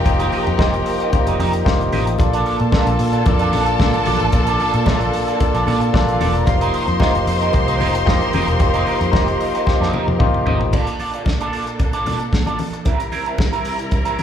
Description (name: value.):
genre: disco.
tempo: 112 BPM.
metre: 4/4.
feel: straight.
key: Bb major.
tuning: A4 = 442 Hz.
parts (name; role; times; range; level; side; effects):
warm studio violin section; second line; 0.0-10.4 s; F4 to C6; -24 LUFS; equal; slapback echo.
barky tine electric piano; accompaniment; 0.0-10.8 s; Bb3 to G5; -20 LUFS; left 4 dB; overdrive, auto-pan, slapback echo.
clear studio string section; sustained chords; 0.0-14.2 s; Bb2 to Bb4; -27 LUFS; right 1 dB; none.
vintage muted fingered electric bass; bass; 0.0-10.7 s; E1 to Bb2; -20 LUFS; right 1 dB; none.
electric guitar at the edge of break-up; accompaniment; 0.1-14.2 s; C4 to Eb5; -24 LUFS; right 6 dB; wah, slapback echo.
warm soul drum kit; drums; 0.1-14.2 s; crash cymbal, hi-hat, kick drum, snare drum, toms; -20 LUFS; equal; none.
congas; percussion; 0.1-14.2 s; none; -28 LUFS; left 4 dB; none.
room: small room ambience.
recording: live gig heard through the venue's PA, club reverb.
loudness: -15 LUFS.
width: side -9 dB against mid.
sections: 0.0-10.7 A section; 10.7-14.2 B section.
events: tine electric piano fill 0.6-2.2; drum fill 9.7-10.7.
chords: 0.0 F9sus4; 2.2 Bbmaj7; 6.5 F9sus4; 10.7 Bbmaj7; 12.9 C7.